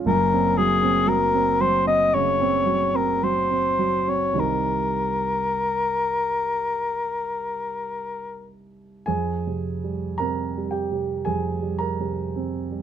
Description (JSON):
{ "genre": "classical, impressionist duo for cor anglais and grand piano", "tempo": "50-60 BPM", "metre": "4/4", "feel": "rubato", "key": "unclear", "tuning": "A4 = 442 Hz", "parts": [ { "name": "dark concert grand piano", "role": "accompaniment", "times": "0.0-12.8 s", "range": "Gb1 to Bb5", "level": "-24 LUFS", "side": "right 4 dB", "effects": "none" }, { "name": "dark cor anglais", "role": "melody", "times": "0.1-8.5 s", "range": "Ab4 to Eb5", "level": "-21 LUFS", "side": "left 3 dB", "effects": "none" } ], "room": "light reverb", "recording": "dark, warm production", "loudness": "-21 LUFS", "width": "side -9 dB against mid", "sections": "0.0-9.1 A section; 9.1-12.8 B section", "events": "none", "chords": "0.1 Gb5; 4.4 Cm7; 9.1 Fmadd9" }